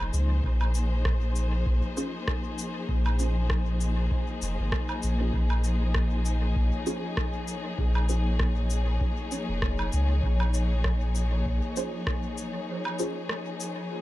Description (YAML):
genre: ambient dub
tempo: 98 BPM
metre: 4/4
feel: swing 56% on 16ths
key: Bb minor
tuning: A4 = 440 Hz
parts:
  - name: dark studio string section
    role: sustained chords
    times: 0.0-14.0 s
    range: F3 to Db5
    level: -33 LUFS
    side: left 2 dB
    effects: none
  - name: warm sub bass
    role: bass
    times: 0.0-11.6 s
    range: F1 to Db2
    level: -25 LUFS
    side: equal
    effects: none
  - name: electronic woodblock, cabasa and rim click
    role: drums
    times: 0.0-13.7 s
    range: none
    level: -35 LUFS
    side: equal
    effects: dub echo
  - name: electronic kick drum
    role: drums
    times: 0.4-12.2 s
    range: none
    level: -30 LUFS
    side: equal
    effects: none
  - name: filtered dub chord stab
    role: stabs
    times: 2.0-13.1 s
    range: Db4 to C5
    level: -37 LUFS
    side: right 2 dB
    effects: phaser, wide subtle chorus, dub echo
room: digital ambience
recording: none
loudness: -25 LUFS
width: side -16 dB against mid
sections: 0.0-14.0 A section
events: break 12.7-14.0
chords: 0.0 Bbm9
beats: | 0.44 1.05 1.67 2.28 | 2.89 3.50 4.12 4.73 | 5.34 5.95 6.56 7.18 | 7.79 8.40 9.01 9.62 | 10.24 10.85 11.46 12.07 | 12.69 13.30 13.91